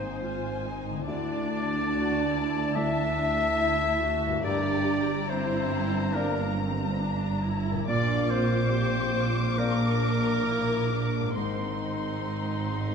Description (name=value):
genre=cinematic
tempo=70 BPM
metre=4/4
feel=rubato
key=unclear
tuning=A4 = 440 Hz
part: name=warm studio violin section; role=melody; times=0.0-12.9 s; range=G#5 to D6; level=-36 LUFS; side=left 4 dB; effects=none
part: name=clear clarinet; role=second line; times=0.0-12.9 s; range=D#4 to E5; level=-31 LUFS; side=left 3 dB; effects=none
part: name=rich studio violin section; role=second line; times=0.0-12.9 s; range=D#4 to E5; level=-36 LUFS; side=left 2 dB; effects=none
part: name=warm baby grand piano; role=accompaniment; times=0.0-12.9 s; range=D2 to D5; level=-37 LUFS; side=left 1 dB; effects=none
part: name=warm studio viola section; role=accompaniment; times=0.0-12.9 s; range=C4 to G4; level=-37 LUFS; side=right 1 dB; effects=none
part: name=dark French horn section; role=sustained chords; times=0.0-12.9 s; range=D#3 to E4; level=-33 LUFS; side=equal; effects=none
part: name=concert harp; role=arpeggios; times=0.0-12.9 s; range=G2 to D5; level=-39 LUFS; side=left 7 dB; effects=none
part: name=rich studio double bass section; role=bass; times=0.0-12.9 s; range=G1 to D2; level=-32 LUFS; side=right 2 dB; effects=none
part: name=warm studio cello section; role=bass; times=0.0-12.9 s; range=D2 to Bb2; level=-34 LUFS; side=right 4 dB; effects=none
room=wet concert hall reverb, RT60 2.1 s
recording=nothing above 10.8 kHz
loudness=-25 LUFS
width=side -6 dB against mid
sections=0.0-12.9 A section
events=none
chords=0.0 G#add9; 1.1 Dsus2; 4.4 Gm; 7.9 Bb; 11.4 G#add9